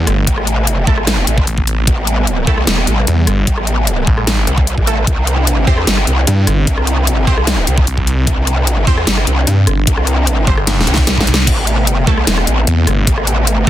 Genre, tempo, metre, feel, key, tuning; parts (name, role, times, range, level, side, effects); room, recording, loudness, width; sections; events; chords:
heavy wobble dubstep; 150 BPM; 4/4; half-time; A minor; A4 = 439 Hz
lush unison pad; sustained chords; 0.0-13.7 s; C3 to E4; -23 LUFS; equal; chorus, sidechain pumping
snarling distorted saw bass; bass; 0.0-13.1 s; G1 to G2; -14 LUFS; equal; distortion, overdrive
dubstep drum kit; drums; 0.1-13.6 s; crash cymbal, hi-hat, rim click, snare drum; -16 LUFS; left 1 dB
growl bass; bass; 0.3-13.7 s; E1 to E2; -14 LUFS; equal; chorus, overdrive
electronic kick drum; drums; 0.3-13.7 s; -14 LUFS; equal
orchestra-hit-like synth stab; stabs; 0.9-13.7 s; A3 to C5; -24 LUFS; right 3 dB; built-in reverb, dub echo
little or no reverb; dense, heavily limited modern master; -11 LUFS; side -13 dB against mid
0.0-13.7 A section
drum fill 10.7-11.5
0.0 Amadd9; 5.1 Cadd9; 11.5 Amadd9